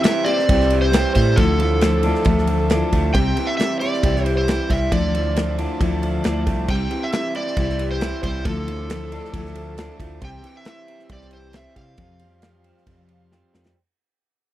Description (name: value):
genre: folk rock and heartland rock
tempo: 136 BPM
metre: 4/4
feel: straight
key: unclear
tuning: A4 = 443 Hz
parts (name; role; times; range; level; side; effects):
- overdriven slide guitar; melody; 0.0-13.5 s; A4 to G5; -25 LUFS; right 1 dB; none
- picked steel-string acoustic guitar; accompaniment; 0.0-13.8 s; F2 to G4; -25 LUFS; left 5 dB; none
- bright tonewheel organ; sustained chords; 0.0-13.7 s; F3 to D6; -35 LUFS; right 3 dB; wide subtle chorus
- electric guitar through a small old amp; riff; 0.0-13.8 s; C3 to E4; -27 LUFS; right 3 dB; none
- natural country drum kit; drums; 0.0-13.8 s; crash cymbal, kick drum, ride cymbal, snare drum; -22 LUFS; equal; none
- mellow tine electric piano; bass; 0.5-13.7 s; C2 to C3; -23 LUFS; right 1 dB; phaser
room: little or no reverb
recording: dry, close 1970s-style studio recording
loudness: -17 LUFS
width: side -14 dB against mid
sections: 0.0-13.8 A section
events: fade-out 0.0-13.8; drum fill 13.3-13.8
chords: 0.0 C; 1.4 Dmadd9; 3.2 C; 4.9 Dmadd9; 6.7 C; 8.5 Dmadd9; 10.2 C; 12.0 Fsus2